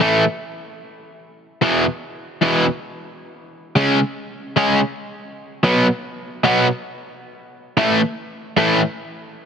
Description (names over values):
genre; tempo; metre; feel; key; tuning
rock; 112 BPM; 4/4; straight; unclear; A4 = 439 Hz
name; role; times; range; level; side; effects
cranked stack guitar; solo; 0.0-8.8 s; E2 to C#4; -17 LUFS; equal; overdrive
room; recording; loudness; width
light reverb, digital ambience; heavily compressed radio sound; -16 LUFS; side -7 dB against mid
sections
0.0-9.5 A section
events
none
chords
0.0 A5; 1.6 E5; 3.8 C#5; 5.6 B5; 7.8 A5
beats
0.01 0.55 1.08 | 1.62 2.15 2.69 3.23 | 3.77 4.30 4.84 5.37 | 5.91 6.44 6.98 7.51 | 8.05 8.58